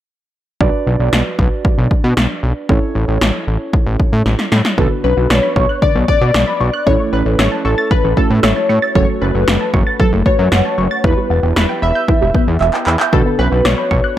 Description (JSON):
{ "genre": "synth-pop", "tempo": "115 BPM", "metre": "4/4", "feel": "straight", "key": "B minor", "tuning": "A4 = 440 Hz", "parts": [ { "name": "muted felt-like synth keys", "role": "accompaniment", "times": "0.6-14.2 s", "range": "A3 to D5", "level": "-22 LUFS", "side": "right 4 dB", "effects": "chorus, dub echo" }, { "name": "fat analog bass", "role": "bass", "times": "0.6-14.0 s", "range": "E1 to B2", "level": "-15 LUFS", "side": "equal", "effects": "none" }, { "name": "80s electronic pad drums", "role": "drums", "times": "0.6-14.0 s", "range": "handclaps, kick drum, snare drum", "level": "-16 LUFS", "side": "equal", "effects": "none" }, { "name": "funky polysynth comp", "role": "melody", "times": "4.8-14.2 s", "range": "A4 to E5", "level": "-18 LUFS", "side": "left 3 dB", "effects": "chorus, dub echo" }, { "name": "resonant blip pluck", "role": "arpeggios", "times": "4.8-14.2 s", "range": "D3 to A6", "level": "-20 LUFS", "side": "right 3 dB", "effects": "phaser, dub echo" } ], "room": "light reverb, digital ambience", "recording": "echo-heavy mix", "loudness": "-12 LUFS", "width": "side -12 dB against mid", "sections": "0.6-4.8 A section; 4.8-14.2 B section", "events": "drum fill 4.3-4.8, 12.6-13.1", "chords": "0.6 Bm; 2.7 A; 4.8 Bmadd9; 6.9 A; 9.0 F#m; 11.0 Em; 13.1 Bmadd9" }